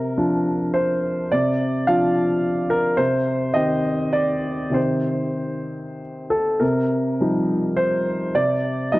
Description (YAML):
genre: neoclassical minimalist piano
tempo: 95-108 BPM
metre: 3/4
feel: rubato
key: unclear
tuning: A4 = 440 Hz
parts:
  - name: warm grand piano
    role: solo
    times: 0.0-9.0 s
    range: C3 to F5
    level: -19 LUFS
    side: equal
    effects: none
room: moderate spring reverb, RT60 1.2 s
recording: worn, warbling old tape, cassette tape, warbly pitch drift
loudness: -19 LUFS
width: side -18 dB against mid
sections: 0.0-6.6 A section; 6.6-9.0 A section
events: none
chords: 0.0 Bb/C; 3.0 Cm; 6.6 Ebadd9/C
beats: 0.17 0.75 | 1.31 1.88 2.43 | 2.99 3.55 4.14 | 4.76 5.39 6.00 | 6.62 7.21 7.78 | 8.35 8.93